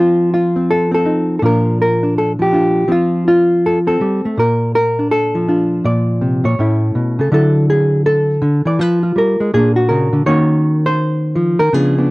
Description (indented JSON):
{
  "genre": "solo jazz",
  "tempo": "163 BPM",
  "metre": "4/4",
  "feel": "swing 63% on 8ths",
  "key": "Bb major",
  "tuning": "A4 = 436 Hz",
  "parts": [
    { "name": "hollow-body jazz guitar", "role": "solo", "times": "0.0-12.1 s", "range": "A2 to D5", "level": "-12 LUFS", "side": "equal", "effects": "none" }
  ],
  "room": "light reverb",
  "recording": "dry, close 1970s-style studio recording",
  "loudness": "-12 LUFS",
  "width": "side -21 dB against mid",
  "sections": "0.0-7.3 A section; 7.3-12.1 B section",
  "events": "none",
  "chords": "0.0 F7; 1.4 Bb; 2.9 F; 4.4 Bbmaj7; 6.6 A; 7.3 Dadd9; 8.8 Fdim; 9.5 Bbaug; 10.2 Ebm9"
}